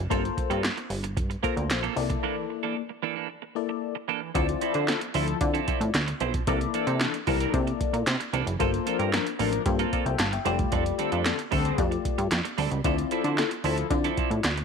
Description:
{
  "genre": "early-eighties boogie funk",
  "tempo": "113 BPM",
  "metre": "4/4",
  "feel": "straight",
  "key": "D minor",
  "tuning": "A4 = 441 Hz",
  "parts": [
    { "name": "plucky analog bass", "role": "bass", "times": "0.0-14.6 s", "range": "F1 to D3", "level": "-28 LUFS", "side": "right 1 dB", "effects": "none" },
    { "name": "FM electric piano", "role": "accompaniment", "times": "0.1-14.4 s", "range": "A3 to A5", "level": "-31 LUFS", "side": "left 13 dB", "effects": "chorus, phaser" },
    { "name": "clean electric guitar", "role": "riff", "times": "0.1-14.6 s", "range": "E3 to C5", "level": "-31 LUFS", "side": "right 16 dB", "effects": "lush chorus" },
    { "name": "electro analog drum machine", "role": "drums", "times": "0.1-14.6 s", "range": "handclaps, hi-hat, kick drum, snare drum", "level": "-29 LUFS", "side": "right 1 dB", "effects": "none" },
    { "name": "analog synth brass", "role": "second line", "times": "4.6-13.9 s", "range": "D3 to Bb4", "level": "-32 LUFS", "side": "left 14 dB", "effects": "chorus" }
  ],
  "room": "light reverb, digital ambience",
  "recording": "1960s-style stereo with parts hard left and right",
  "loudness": "-24 LUFS",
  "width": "side -6 dB against mid",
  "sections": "0.0-4.4 A section; 4.4-14.6 B section",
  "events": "break 2.2-4.4",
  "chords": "0.1 Gm11; 2.0 C13; 4.4 Dm9; 6.5 C13; 8.6 Gm11; 10.5 F69; 12.8 Dm9",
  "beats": "| 0.11 0.64 1.17 1.70 | 2.23 2.76 3.29 3.82 | 4.36 4.89 5.42 5.95 | 6.48 7.01 7.54 8.07 | 8.60 9.13 9.66 10.20 | 10.73 11.26 11.79 12.32 | 12.85 13.38 13.91 14.44"
}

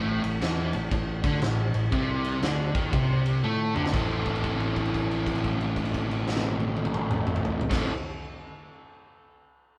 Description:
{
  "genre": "blues rock power trio and southern rock",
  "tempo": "119 BPM",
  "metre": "4/4",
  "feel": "swing 64% on 8ths",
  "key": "A minor",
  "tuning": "A4 = 441 Hz",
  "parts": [
    { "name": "fuzz guitar", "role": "riff", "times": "0.0-7.9 s", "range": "A2 to A4", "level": "-30 LUFS", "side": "equal", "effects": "distortion" },
    { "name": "fuzz fingered electric bass", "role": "bass", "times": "0.0-7.9 s", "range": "A1 to A2", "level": "-34 LUFS", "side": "equal", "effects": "overdrive" },
    { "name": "huge arena drum kit", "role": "drums", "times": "0.2-7.8 s", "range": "crash cymbal, kick drum, ride cymbal, snare drum, toms", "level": "-33 LUFS", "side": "equal", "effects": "none" }
  ],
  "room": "moderate large studio reverb, RT60 0.9 s",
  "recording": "band playing live in one room, cassette tape",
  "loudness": "-27 LUFS",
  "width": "mono",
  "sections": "0.0-3.9 A section; 3.9-8.0 B section",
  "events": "drum fill 3.4-3.9; held note 3.9-7.7",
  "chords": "0.0 Am",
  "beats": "0.42 0.92 1.42 | 1.93 2.43 2.93 3.44 | 3.94 4.44 4.94 5.45 | 5.95 6.45 6.95 7.45"
}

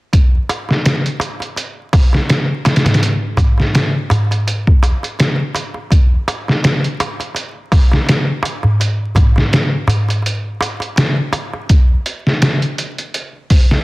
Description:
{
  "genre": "trip hop",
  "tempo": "83 BPM",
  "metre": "4/4",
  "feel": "swing 56% on 16ths",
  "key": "none",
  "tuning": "none",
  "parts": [
    { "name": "trip hop sampler-style drum kit", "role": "drums", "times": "0.1-13.8 s", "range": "hi-hat, kick drum, snare drum", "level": "-13 LUFS", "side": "equal", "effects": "studio reverb" },
    { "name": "darbuka", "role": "percussion", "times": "0.1-11.7 s", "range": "none", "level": "-18 LUFS", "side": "equal", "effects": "none" }
  ],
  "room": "light reverb",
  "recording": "dense, heavily limited modern master, vinyl crackle",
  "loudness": "-13 LUFS",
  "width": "side -21 dB against mid",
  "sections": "0.1-11.7 A section; 11.7-13.8 B section",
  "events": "break 10.2-11.7",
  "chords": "none",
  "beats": "| 0.13 0.85 1.57 2.30 | 3.02 3.74 4.47 5.19 | 5.91 6.63 7.36 8.08 | 8.80 9.53 10.25 10.97 | 11.70 12.42 13.14"
}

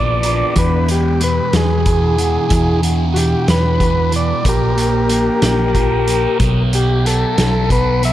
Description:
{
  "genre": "psychedelic rock",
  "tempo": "62 BPM (dotted quarters)",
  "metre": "6/8",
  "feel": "straight",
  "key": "unclear",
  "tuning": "A4 = 440 Hz",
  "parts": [
    { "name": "overdriven combo organ", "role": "melody", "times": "0.0-8.1 s", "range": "F#4 to E5", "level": "-18 LUFS", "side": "left 1 dB", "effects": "tape echo" },
    { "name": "fuzz guitar", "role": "riff", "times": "0.0-8.1 s", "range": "E2 to B3", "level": "-20 LUFS", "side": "right 1 dB", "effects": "distortion, phaser, tape echo" },
    { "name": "hollow-body short-scale picked electric bass", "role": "bass", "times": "0.0-8.1 s", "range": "A#1 to E2", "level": "-17 LUFS", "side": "equal", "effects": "none" },
    { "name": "hand-pumped harmonium", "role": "drone", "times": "0.0-0.6 s", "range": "E2", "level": "-32 LUFS", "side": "left 2 dB", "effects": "none" },
    { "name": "vintage drum kit", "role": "drums", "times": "0.2-8.1 s", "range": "hi-hat, kick drum, snare drum", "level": "-20 LUFS", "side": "equal", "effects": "none" }
  ],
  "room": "small room ambience",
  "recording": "echo-heavy mix",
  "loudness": "-13 LUFS",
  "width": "side -13 dB against mid",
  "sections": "0.0-8.1 A section",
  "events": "transistor combo organ solo 0.0-8.1",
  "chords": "0.0 A#; 0.6 E; 4.5 A#5; 6.4 B5",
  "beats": "| 0.56 1.54 | 2.51 3.48 | 4.46 5.43 | 6.41 7.38"
}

